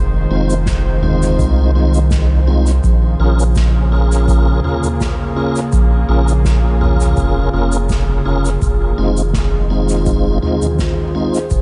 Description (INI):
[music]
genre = ambient dub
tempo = 83 BPM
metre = 4/4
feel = swing 54% on 16ths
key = Bb minor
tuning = A4 = 439 Hz
[part]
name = warbly tape-like pad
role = sustained chords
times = 0.0-11.6 s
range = Db3 to C5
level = -24 LUFS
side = equal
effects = chorus, built-in reverb
[part]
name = soft dub sub bass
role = bass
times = 0.0-11.6 s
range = F1 to C2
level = -16 LUFS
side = equal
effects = none
[part]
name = mellow tonewheel organ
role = stabs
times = 0.3-11.4 s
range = Ab3 to Bb4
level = -23 LUFS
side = equal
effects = chorus vibrato, fast rotary speaker, dub echo
[part]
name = soft-mallet drum kit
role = drums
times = 0.5-11.6 s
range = shaker, snare drum, toms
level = -27 LUFS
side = equal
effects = dub echo
[part]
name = electronic kick drum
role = drums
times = 0.7-11.6 s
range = none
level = -22 LUFS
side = equal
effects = none
[sound]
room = studio reverb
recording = nothing above 10.3 kHz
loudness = -15 LUFS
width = mono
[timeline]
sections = 0.0-11.6 A section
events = none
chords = 0.0 Fm7; 2.8 Bbm7; 8.6 Fm7